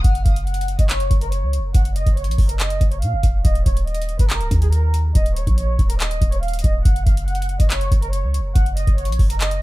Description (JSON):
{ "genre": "hip hop, trap", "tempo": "141 BPM", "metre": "4/4", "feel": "half-time", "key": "F# major", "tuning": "A4 = 438 Hz", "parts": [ { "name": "warm studio violin section", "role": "melody", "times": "0.0-9.6 s", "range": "G#4 to F#5", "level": "-27 LUFS", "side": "right 1 dB", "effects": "low-pass filter" }, { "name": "warm 808-style bass", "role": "bass", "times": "0.0-9.6 s", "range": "C#1 to A#2", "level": "-19 LUFS", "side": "equal", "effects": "none" }, { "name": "booming analog drum machine", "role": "drums", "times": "0.0-9.6 s", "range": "handclaps, hi-hat, kick drum", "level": "-18 LUFS", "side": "equal", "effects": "none" } ], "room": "little or no reverb", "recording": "none", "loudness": "-16 LUFS", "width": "side -18 dB against mid", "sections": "0.0-9.6 A section", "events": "none", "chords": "0.0 F#5; 3.4 D#7(no3); 6.9 F#5" }